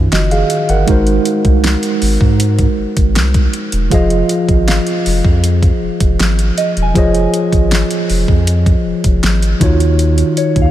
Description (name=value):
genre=contemporary R&B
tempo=79 BPM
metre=4/4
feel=straight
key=unclear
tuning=A4 = 441 Hz
part: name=mellow tine electric piano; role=accompaniment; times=0.0-10.7 s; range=Eb3 to Gb5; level=-15 LUFS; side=right 1 dB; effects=medium stereo tremolo
part: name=round analog bass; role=bass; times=0.0-10.7 s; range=Fb1 to Ab2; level=-14 LUFS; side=equal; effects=none
part: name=soft synth bell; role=texture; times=0.0-10.7 s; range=Db5 to Ab5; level=-24 LUFS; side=left 1 dB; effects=chorus, phaser, ping-pong delay
part: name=smooth R&B drum kit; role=drums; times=0.1-10.7 s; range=hi-hat, kick drum, snare drum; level=-16 LUFS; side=equal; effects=none
room=light reverb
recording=none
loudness=-11 LUFS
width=side -13 dB against mid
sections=0.0-10.7 A section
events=none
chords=0.0 Ebm9; 0.9 Ab7; 3.9 Fm7; 7.0 Dbmaj9/F; 9.6 Ebm9